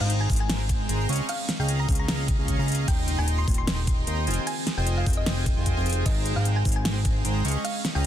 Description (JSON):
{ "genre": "future bass", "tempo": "151 BPM", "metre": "4/4", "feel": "swing 53% on 16ths, half-time", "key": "Ab major", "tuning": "A4 = 440 Hz", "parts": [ { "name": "thumb-piano-like synth pluck", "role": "melody", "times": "0.0-8.1 s", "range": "Eb5 to C6", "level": "-36 LUFS", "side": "equal", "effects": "chorus, sidechain pumping, dub echo" }, { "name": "ethereal airy pad", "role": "sustained chords", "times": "0.2-8.1 s", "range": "Db3 to Ab4", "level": "-36 LUFS", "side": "equal", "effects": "ensemble chorus, built-in reverb, sidechain pumping" }, { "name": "soft supersaw", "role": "riff", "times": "0.0-8.1 s", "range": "Ab3 to Db6", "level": "-31 LUFS", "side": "right 1 dB", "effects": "sidechain pumping" }, { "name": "fat analog bass", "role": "bass", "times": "0.0-8.1 s", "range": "Eb1 to Eb2", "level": "-26 LUFS", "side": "equal", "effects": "sidechain pumping" }, { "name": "pop drum kit", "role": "drums", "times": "0.1-7.9 s", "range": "crash cymbal, hi-hat, snare drum", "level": "-31 LUFS", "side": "equal", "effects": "none" }, { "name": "electronic kick drum", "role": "drums", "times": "0.3-7.1 s", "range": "none", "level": "-25 LUFS", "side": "equal", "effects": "none" } ], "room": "little or no reverb", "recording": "dense, heavily limited modern master", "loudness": "-22 LUFS", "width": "side -11 dB against mid", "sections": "0.0-8.1 A section", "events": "none", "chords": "0.0 Abmaj7; 1.1 Db6; 2.9 Cm7/Eb; 4.3 Fm7; 6.1 Abmaj7; 7.5 Db6", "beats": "0.10 0.50 0.89 | 1.29 1.69 2.09 2.48 | 2.88 3.28 3.68 4.07 | 4.47 4.87 5.26 5.66 | 6.06 6.46 6.85 7.25 | 7.65 8.05" }